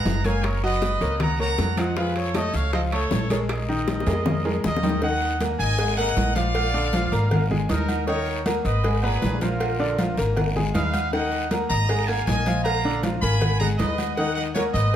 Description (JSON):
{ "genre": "latin, salsa", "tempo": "157 BPM", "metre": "4/4", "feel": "straight", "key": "Eb minor", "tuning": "A4 = 440 Hz", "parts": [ { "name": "bright trumpet section", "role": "melody", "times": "0.0-15.0 s", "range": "Eb4 to Cb6", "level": "-27 LUFS", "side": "equal", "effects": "none" }, { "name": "clear grand piano", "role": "accompaniment", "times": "0.0-15.0 s", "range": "Bb2 to Eb6", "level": "-27 LUFS", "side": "left 1 dB", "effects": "none" }, { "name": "upright bass", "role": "bass", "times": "0.1-15.0 s", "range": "Gb1 to F2", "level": "-25 LUFS", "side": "equal", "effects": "none" }, { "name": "bongos and cowbell", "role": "percussion", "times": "0.1-14.7 s", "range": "none", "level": "-32 LUFS", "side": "left 3 dB", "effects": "none" }, { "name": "congas", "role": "percussion", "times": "0.1-15.0 s", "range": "none", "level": "-30 LUFS", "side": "left 1 dB", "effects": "none" }, { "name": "guiro", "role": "percussion", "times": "0.1-14.9 s", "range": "none", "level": "-40 LUFS", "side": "left 4 dB", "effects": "none" }, { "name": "timbales and agogo bells", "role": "percussion", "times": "0.1-15.0 s", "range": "none", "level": "-32 LUFS", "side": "right 4 dB", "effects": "none" } ], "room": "moderate large studio reverb, RT60 1.2 s", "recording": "none", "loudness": "-20 LUFS", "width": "side -10 dB against mid", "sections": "0.0-5.0 A section; 5.0-15.0 B section", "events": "drum fill 3.9-5.0", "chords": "0.4 Gb6; 2.0 Faug; 3.5 Bb7sus4; 5.0 Ebm; 5.8 Absus2; 6.5 Bb7; 7.3 Absus2; 8.8 Abmadd9; 9.6 Bb7; 10.4 Abmadd9; 11.9 Absus2; 12.7 Bb7; 13.4 Abmadd9; 14.2 Eb5" }